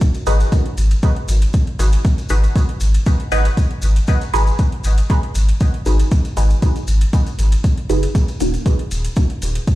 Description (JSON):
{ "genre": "dub techno", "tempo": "118 BPM", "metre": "4/4", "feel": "straight", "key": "unclear", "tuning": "A4 = 440 Hz", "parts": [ { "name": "electronic hi-hat", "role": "drums", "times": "0.0-9.8 s", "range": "none", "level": "-36 LUFS", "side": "right 2 dB", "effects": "overdrive, small room reverb" }, { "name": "electronic kick drum", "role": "drums", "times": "0.0-9.8 s", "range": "none", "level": "-15 LUFS", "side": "equal", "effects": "overdrive, small room reverb" }, { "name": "maracas", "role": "percussion", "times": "0.0-9.8 s", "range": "none", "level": "-33 LUFS", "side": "left 2 dB", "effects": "none" }, { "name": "filtered dub chord stab", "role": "stabs", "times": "0.3-8.6 s", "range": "Bb3 to Cb5", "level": "-24 LUFS", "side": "right 1 dB", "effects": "phaser, sidechain pumping, dub echo" }, { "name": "round analog bass", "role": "bass", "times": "0.3-9.6 s", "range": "Eb1 to Ab1", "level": "-15 LUFS", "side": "equal", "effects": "sidechain pumping" } ], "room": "digital ambience", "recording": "played on a big sound system in a bare room, stone room reverb", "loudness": "-14 LUFS", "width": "side -16 dB against mid", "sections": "0.0-9.8 A section", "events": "none", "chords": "0.0 Abm7; 8.1 Ebm7" }